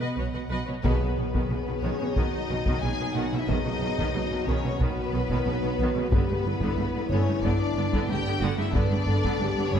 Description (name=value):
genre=cinematic, epic orchestral film score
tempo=91 BPM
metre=4/4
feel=straight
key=unclear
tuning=A4 = 439 Hz
part: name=warm symphonic violin section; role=melody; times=0.0-9.8 s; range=B4 to G#5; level=-34 LUFS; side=left 6 dB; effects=none
part: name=warm symphonic violin section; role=second line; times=0.0-9.8 s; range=B3 to D#5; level=-35 LUFS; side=left 4 dB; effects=none
part: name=clear symphonic viola section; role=accompaniment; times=0.0-9.8 s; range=C#3 to B4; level=-34 LUFS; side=right 2 dB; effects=none
part: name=mellow French horn section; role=sustained chords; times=0.0-9.8 s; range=B3 to B4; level=-33 LUFS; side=left 3 dB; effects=none
part: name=rich symphonic cello section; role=bass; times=0.0-9.8 s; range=G2 to B2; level=-31 LUFS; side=right 2 dB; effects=none
part: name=rich symphonic double bass section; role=bass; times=0.2-9.8 s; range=G1 to B1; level=-30 LUFS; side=right 2 dB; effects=none
part: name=clear trombone section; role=sustained chords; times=0.8-9.8 s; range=D3 to B3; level=-35 LUFS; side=right 3 dB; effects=none
part: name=taiko ensemble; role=drums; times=0.8-9.8 s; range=none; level=-30 LUFS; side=left 1 dB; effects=none
part: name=timpani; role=percussion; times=0.8-1.8 s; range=B2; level=-37 LUFS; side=left 3 dB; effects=none
room=wet concert hall reverb, RT60 2.5 s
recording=none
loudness=-24 LUFS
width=side -8 dB against mid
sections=0.8-9.8 A section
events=band accent 0.8-1.5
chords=0.0 B; 6.1 G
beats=0.18 | 0.85 1.51 2.17 2.83 | 3.49 4.14 4.80 5.46 | 6.12 6.78 7.44 8.09 | 8.75 9.40